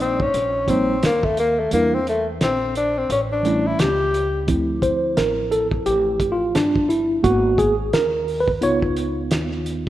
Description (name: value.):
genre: hip hop, jazz-hop.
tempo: 87 BPM.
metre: 4/4.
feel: swing 58% on 16ths.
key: unclear.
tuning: A4 = 440 Hz.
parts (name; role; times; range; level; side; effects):
breathy tenor saxophone; melody; 0.0-4.5 s; A3 to G4; -20 LUFS; left 2 dB; none.
mellow tine electric piano; accompaniment; 0.0-9.9 s; E3 to C#5; -20 LUFS; right 1 dB; medium stereo tremolo.
upright bass; bass; 0.0-9.9 s; G1 to E2; -28 LUFS; equal; none.
cloth-damped thuddy drum kit; drums; 0.0-9.9 s; hi-hat, kick drum, snare drum; -24 LUFS; right 1 dB; none.
room: moderate lush hall reverb, RT60 1.9 s, small room ambience.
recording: rough home demo mix.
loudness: -17 LUFS.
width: side -13 dB against mid.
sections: 0.0-4.5 A section; 4.5-9.9 A section.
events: tenor saxophone solo 0.0-4.5; kick muted 1.7-4.5; tine electric piano solo 4.5-9.9.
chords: 0.0 Eb6; 1.7 Em7b5; 3.1 A7; 4.5 Dm7; 7.2 G#m7; 8.6 C#9.